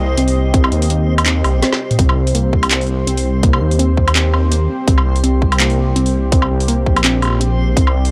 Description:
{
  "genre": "half-time drum and bass",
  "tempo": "166 BPM",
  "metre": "4/4",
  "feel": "swing 56% on 16ths, half-time",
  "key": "C minor",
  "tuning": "A4 = 440 Hz",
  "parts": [
    { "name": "dark analog pad", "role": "sustained chords", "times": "0.0-8.1 s", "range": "C4 to Eb5", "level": "-26 LUFS", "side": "equal", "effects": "chorus, sidechain pumping" },
    { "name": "warbly dusty pluck", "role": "arpeggios", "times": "0.0-7.9 s", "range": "Bb3 to C4", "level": "-24 LUFS", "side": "equal", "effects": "chorus, tape echo" },
    { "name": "dark detuned saw bass", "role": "bass", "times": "0.0-8.1 s", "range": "Bb1 to Eb2", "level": "-18 LUFS", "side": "equal", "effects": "none" },
    { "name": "backwards swelling texture", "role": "texture", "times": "0.0-8.1 s", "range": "C5", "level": "-32 LUFS", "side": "equal", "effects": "built-in reverb" },
    { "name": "drum and bass drum kit", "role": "drums", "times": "0.2-8.1 s", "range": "handclaps, hi-hat, snare drum, toms, woodblock", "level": "-20 LUFS", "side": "equal", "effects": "none" },
    { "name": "electronic kick drum", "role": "drums", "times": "0.5-7.8 s", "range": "none", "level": "-17 LUFS", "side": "equal", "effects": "none" }
  ],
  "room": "little or no reverb",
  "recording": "dry, gritty hardware recording",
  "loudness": "-15 LUFS",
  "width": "mono",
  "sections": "0.0-8.1 A section",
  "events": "drum fill 1.6-2.0",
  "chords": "0.0 C5"
}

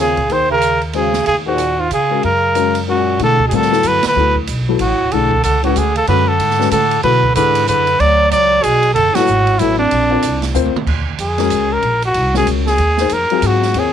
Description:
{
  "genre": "modal jazz",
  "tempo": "188 BPM",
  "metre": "3/4",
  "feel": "swing 62% on 8ths",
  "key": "Eb dorian, B dorian from 3.2 s, Eb dorian from 10.9 s",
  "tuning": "A4 = 440 Hz",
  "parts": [
    { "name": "clear trumpet", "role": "melody", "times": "0.0-13.9 s", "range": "D4 to D5", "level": "-15 LUFS", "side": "equal", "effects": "none" },
    { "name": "clear bass clarinet", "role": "second line", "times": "0.0-10.5 s", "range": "E#2 to F#3", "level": "-21 LUFS", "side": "right 13 dB", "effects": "none" },
    { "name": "dark grand piano", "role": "accompaniment", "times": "0.0-13.9 s", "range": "E3 to D5", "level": "-20 LUFS", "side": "left 14 dB", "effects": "none" },
    { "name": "upright bass", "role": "bass", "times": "0.0-13.9 s", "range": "D1 to Db3", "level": "-19 LUFS", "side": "equal", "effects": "none" },
    { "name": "open jazz drum kit", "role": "drums", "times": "0.2-13.8 s", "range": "crash cymbal, hi-hat, kick drum, ride cymbal, snare drum, toms", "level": "-25 LUFS", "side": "right 7 dB", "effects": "none" }
  ],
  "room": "small room reverb",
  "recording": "1960s-style stereo with parts hard left and right",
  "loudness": "-12 LUFS",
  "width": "side -9 dB against mid",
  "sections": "0.0-3.2 A section; 3.2-10.9 B section; 10.9-13.9 C section",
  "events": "band accent 4.0, 9.1; drum fill 10.6-10.9; trumpet solo 10.9-13.9",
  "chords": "0.0 Ebm11; 2.2 Gb; 3.2 Bm7; 5.1 Dadd9/B; 9.0 F#m11; 9.9 A#; 10.9 Ebm11"
}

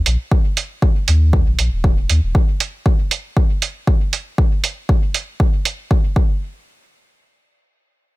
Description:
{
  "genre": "dub techno",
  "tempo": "118 BPM",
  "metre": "4/4",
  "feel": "straight",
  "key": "unclear",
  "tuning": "A4 = 440 Hz",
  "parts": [
    { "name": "soft dub sub bass", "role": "bass", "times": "0.1-2.3 s", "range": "Eb1 to Eb2", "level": "-15 LUFS", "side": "equal", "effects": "sidechain pumping" },
    { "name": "electronic hi-hat", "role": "drums", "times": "0.1-5.8 s", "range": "none", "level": "-20 LUFS", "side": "right 7 dB", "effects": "overdrive" },
    { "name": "electronic kick drum", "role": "drums", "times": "0.3-6.3 s", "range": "none", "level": "-15 LUFS", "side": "equal", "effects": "overdrive" }
  ],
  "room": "digital ambience",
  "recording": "none",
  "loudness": "-15 LUFS",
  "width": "side -19 dB against mid",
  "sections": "0.0-6.4 A section; 6.4-8.2 B section",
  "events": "none",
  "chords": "none"
}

